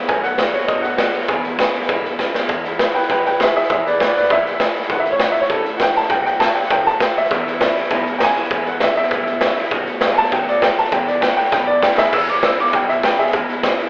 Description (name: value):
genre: rockabilly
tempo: 199 BPM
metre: 4/4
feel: straight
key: E major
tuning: A4 = 440 Hz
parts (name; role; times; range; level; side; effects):
- picked steel-string acoustic guitar; accompaniment; 0.0-13.9 s; E2 to F#4; -27 LUFS; left 1 dB; none
- electric guitar through a small old amp; riff; 0.0-2.5, 7.3-13.9 s; E2 to G#3; -27 LUFS; equal; none
- raw garage drum kit; drums; 0.0-13.9 s; crash cymbal, hi-hat, kick drum, snare drum; -18 LUFS; equal; none
- clear upright piano; melody; 0.1-13.3 s; G#4 to E6; -18 LUFS; equal; none
- upright bass; bass; 0.1-13.8 s; F#1 to E2; -29 LUFS; equal; none
room: light reverb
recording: band playing live in one room, telephone sound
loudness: -14 LUFS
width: side -24 dB against mid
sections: 0.0-2.5 A section; 2.5-12.1 B section; 12.1-13.9 B section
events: drum fill 2.2-2.5, 11.5-12.1; upright piano solo 2.5-13.9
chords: 0.1 B7; 1.3 E; 4.9 A; 6.1 B7; 7.3 E; 9.7 B7; 10.9 E